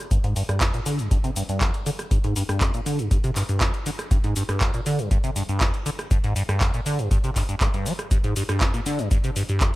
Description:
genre	acid house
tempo	120 BPM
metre	4/4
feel	straight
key	G phrygian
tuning	A4 = 440 Hz
part	liquid acid bass	riff	0.1-9.7 s	F2 to G3	-25 LUFS	equal	phaser, overdrive, analog chorus, sidechain pumping
part	booming analog drum machine	drums	0.1-9.7 s	cabasa, handclaps, hi-hat, rim click	-28 LUFS	equal	none
part	electronic kick drum	drums	0.1-9.7 s	none	-22 LUFS	equal	none
room	little or no reverb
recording	none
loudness	-21 LUFS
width	side -18 dB against mid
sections	0.0-9.8 A section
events	none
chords	none

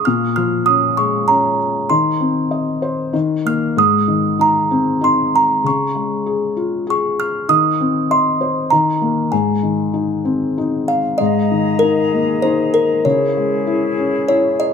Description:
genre	children's music, lullaby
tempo	97 BPM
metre	3/4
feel	straight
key	Ab major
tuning	A4 = 440 Hz
part	music box	melody	0.0-14.7 s	Bb4 to F6	-16 LUFS	right 2 dB	none
part	felt-muted upright piano	accompaniment	0.0-14.7 s	Ab2 to Eb5	-18 LUFS	left 4 dB	none
part	bright small flute group	sustained chords	11.2-14.7 s	Db4 to Bb5	-24 LUFS	left 1 dB	none
room	moderate recital hall reverb, RT60 1.4 s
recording	close, detailed microphones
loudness	-14 LUFS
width	side -6 dB against mid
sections	0.0-11.2 A section; 11.2-14.7 A section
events	none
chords	0.1 Bbm7; 1.9 Cm/Eb; 3.1 Eb5; 3.8 Abadd9; 5.6 Db; 7.5 Cm/Eb; 8.7 Eb5; 9.3 Ab; 11.2 Absus2; 13.1 Dbm

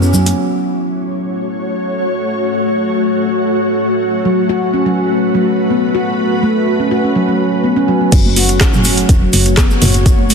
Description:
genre	afro house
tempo	124 BPM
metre	4/4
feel	straight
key	F# minor pentatonic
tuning	A4 = 439 Hz
part	ethereal airy pad	sustained chords	0.0-10.3 s	F#3 to D6	-16 LUFS	left 2 dB	ensemble chorus, built-in reverb, tremolo, sidechain pumping
part	handpan	arpeggios	0.0-0.4, 4.3-10.3 s	F#3 to F#4	-16 LUFS	right 1 dB	sidechain pumping, ping-pong delay
part	woody FM bass	bass	0.0-0.3, 8.1-10.3 s	E1 to F#2	-16 LUFS	equal	sidechain pumping
part	congas	percussion	0.0-0.4, 8.1-10.3 s	none	-23 LUFS	right 4 dB	none
part	egg shaker	percussion	0.0-0.4, 8.1-10.3 s	none	-26 LUFS	left 2 dB	none
part	deep house drum kit	drums	0.3-0.4, 8.1-10.3 s	crash cymbal, handclaps, hi-hat, rim click, toms	-16 LUFS	right 1 dB	overdrive, small room ambience
part	electronic kick drum	drums	8.1-10.2 s	none	-11 LUFS	equal	small room ambience
room	moderate lush hall reverb, RT60 2.2 s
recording	dense, heavily limited modern master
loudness	-11 LUFS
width	side -6 dB against mid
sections	0.4-8.1 A section; 8.1-10.3 B section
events	break 0.0-0.4; drop 8.1-10.3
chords	0.4 F#m

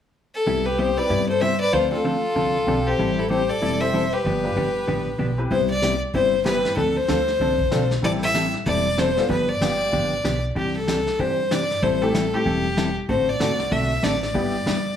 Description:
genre	country, western swing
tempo	190 BPM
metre	4/4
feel	swing 61% on 8ths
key	C major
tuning	A4 = 440 Hz
part	clear fiddle	melody	0.3-15.0 s	G4 to E5	-22 LUFS	left 2 dB	none
part	vintage hollow-body jazz guitar	accompaniment	0.5-14.8 s	C3 to A4	-25 LUFS	equal	none
part	upright bass	bass	0.5-14.9 s	E1 to G2	-28 LUFS	left 1 dB	none
part	warm fiddle	second line	0.7-5.4 s	C4 to C5	-27 LUFS	equal	none
part	honky-tonk upright piano	accompaniment	1.0-14.5 s	A3 to B4	-29 LUFS	left 2 dB	none
part	vintage brush drum kit	drums	5.5-15.0 s	brushed snare drum, hi-hat, kick drum, snare drum	-30 LUFS	left 1 dB	none
room	moderate studio reverb, RT60 0.9 s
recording	studio reverb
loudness	-19 LUFS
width	side -9 dB against mid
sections	0.5-5.5 A section; 5.5-15.0 B section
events	none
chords	0.5 Cmaj7; 1.7 Dm7; 3.0 Am7; 4.2 G7; 5.5 Cmaj7; 6.8 Dm7; 8.0 Am7; 9.3 G7; 10.6 Cadd9; 11.8 Am7; 13.1 D7/A; 14.4 G6

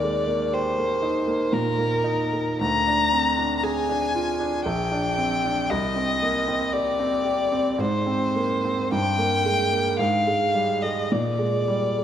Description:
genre	classical, romantic duo for violin and grand piano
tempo	48-61 BPM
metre	3/4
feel	rubato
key	Eb major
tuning	A4 = 440 Hz
part	warm violin	melody	0.0-12.0 s	Bb4 to Bb5	-24 LUFS	left 3 dB	none
part	clear grand piano	accompaniment	0.0-12.0 s	Bb1 to Ab4	-24 LUFS	right 2 dB	none
room	moderate concert hall reverb, RT60 2.2 s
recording	minimal, uncompressed stereo recording, vinyl crackle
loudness	-21 LUFS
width	side -9 dB against mid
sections	0.0-12.0 A section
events	none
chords	0.0 Eb; 2.6 Ddim; 4.7 Gm/Bb; 5.7 Cm; 7.8 Abadd9; 8.9 Gm; 10.0 Fm9/Ab; 11.1 Bb7

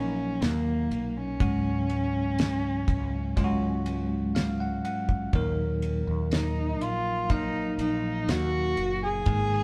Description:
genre	pop ballad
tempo	61 BPM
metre	4/4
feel	straight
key	Eb minor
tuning	A4 = 440 Hz
part	dark cello	melody	0.0-9.6 s	Bb3 to Ab4	-32 LUFS	equal	none
part	bell-like tine electric piano	accompaniment	0.0-9.6 s	Ab2 to Gb5	-32 LUFS	equal	none
part	mellow fretless electric bass	bass	0.0-9.6 s	Gb1 to Eb2	-35 LUFS	equal	none
part	damped 70s drum kit	drums	0.4-9.5 s	kick drum, ride cymbal, snare drum	-31 LUFS	equal	none
room	moderate stone room reverb, RT60 1.3 s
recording	band playing live in one room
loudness	-28 LUFS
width	mono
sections	0.0-9.6 A section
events	tine electric piano fill 3.9-5.3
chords	0.0 Ebm; 1.4 Dbsus4; 5.3 Ebm

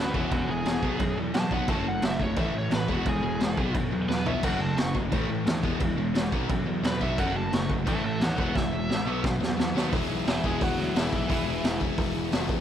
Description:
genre	punk rock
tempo	175 BPM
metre	4/4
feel	straight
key	unclear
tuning	A4 = 440 Hz
part	biting lead guitar	melody	0.0-11.8 s	E3 to C#6	-33 LUFS	equal	overdrive, digital delay
part	cranked stack guitar	riff	0.0-12.6 s	F#2 to G#4	-33 LUFS	right 10 dB	overdrive
part	overdriven electric guitar	riff	0.0-9.9 s	E2 to B3	-36 LUFS	right 1 dB	none
part	overdriven semi-hollow guitar	riff	0.0-12.6 s	F#2 to G#4	-32 LUFS	left 11 dB	none
part	fuzz picked electric bass	bass	0.0-12.6 s	E1 to F#2	-33 LUFS	equal	overdrive
part	raw garage drum kit	drums	0.1-12.6 s	crash cymbal, hi-hat, kick drum, snare drum, toms	-28 LUFS	equal	none
room	light reverb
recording	none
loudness	-24 LUFS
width	side -10 dB against mid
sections	0.0-9.9 A section; 9.9-12.6 B section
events	lead electric guitar solo 0.0-9.9; drum fill 4.1-4.4, 8.6-9.9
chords	0.1 E; 0.8 B5; 1.7 F#m; 2.4 A5; 2.9 E; 3.6 B5; 4.4 F#m; 5.1 A5; 5.6 E; 6.3 B5; 7.2 F#m; 7.9 A; 8.4 E; 9.1 B5; 9.9 E

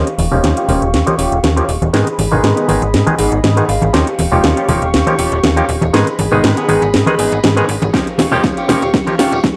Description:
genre	filtered disco house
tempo	120 BPM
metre	4/4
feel	swing 53% on 16ths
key	Eb mixolydian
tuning	A4 = 439 Hz
part	clav	accompaniment	0.0-9.2 s	Eb3 to Ab4	-21 LUFS	equal	phaser, sidechain pumping, low-pass filter
part	warm chamber string section	sustained chords	0.0-9.6 s	G4 to Db6	-23 LUFS	equal	sidechain pumping, low-pass filter
part	slap-like FM bass	bass	0.0-9.6 s	Eb1 to Ab2	-19 LUFS	equal	sidechain pumping, low-pass filter
part	house drum kit	drums	0.1-9.5 s	hi-hat, snare drum	-19 LUFS	equal	overdrive
part	tambourine and congas	percussion	0.1-9.5 s	none	-24 LUFS	equal	sidechain pumping on perc, low-pass filter on perc
part	clean electric guitar	riff	0.3-9.4 s	Cb4 to F5	-22 LUFS	equal	phaser, sidechain pumping, low-pass filter
part	electronic kick drum	drums	7.9-9.5 s	none	-20 LUFS	equal	overdrive
room	moderate plate reverb, RT60 1.8 s, digital ambience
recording	dry, gritty hardware recording, high-pass filter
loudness	-14 LUFS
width	mono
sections	0.0-9.6 A section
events	build-up 0.0-9.6; drum fill 0.0-9.6; filter sweep 0.0-9.6; clean electric guitar fill 3.2-3.9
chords	0.0 Eb9; 1.9 Abm; 3.9 Eb9; 5.9 Abm; 7.9 Eb9

